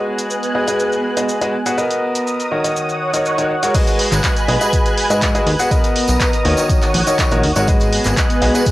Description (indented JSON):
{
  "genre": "piano house",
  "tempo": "122 BPM",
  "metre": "4/4",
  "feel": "straight",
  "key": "G# minor",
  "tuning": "A4 = 440 Hz",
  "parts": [
    { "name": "analog string pad", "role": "sustained chords", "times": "0.0-8.7 s", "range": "B3 to F#6", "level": "-21 LUFS", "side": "right 1 dB", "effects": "ensemble chorus, sidechain pumping, cassette tape" },
    { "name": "bright baby grand piano", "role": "riff", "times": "0.0-8.7 s", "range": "D#3 to F#5", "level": "-18 LUFS", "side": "equal", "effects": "sidechain pumping, cassette tape, tape echo" },
    { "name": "punchy analog drum machine", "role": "drums", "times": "0.2-8.7 s", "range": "crash cymbal, handclaps, hi-hat, shaker", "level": "-22 LUFS", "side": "equal", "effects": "cassette tape" },
    { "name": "electronic kick drum", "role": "drums", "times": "3.7-8.7 s", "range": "none", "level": "-18 LUFS", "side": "equal", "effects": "cassette tape" },
    { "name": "tambourine", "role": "percussion", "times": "3.7-8.7 s", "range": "none", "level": "-30 LUFS", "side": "right 3 dB", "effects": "none" },
    { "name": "plucky analog bass", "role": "bass", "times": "4.1-8.5 s", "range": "G#1 to G#2", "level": "-18 LUFS", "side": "equal", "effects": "sidechain pumping" }
  ],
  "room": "light reverb",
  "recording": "home recording on cassette",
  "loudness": "-14 LUFS",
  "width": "side -17 dB against mid",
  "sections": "0.0-3.7 A section; 3.7-8.7 B section",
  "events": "drop 3.7-8.7",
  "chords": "0.0 G#m7; 1.8 Bmaj7; 2.5 D#m7; 3.7 G#m7; 5.7 Bmaj7; 6.5 D#m7; 7.7 G#m7"
}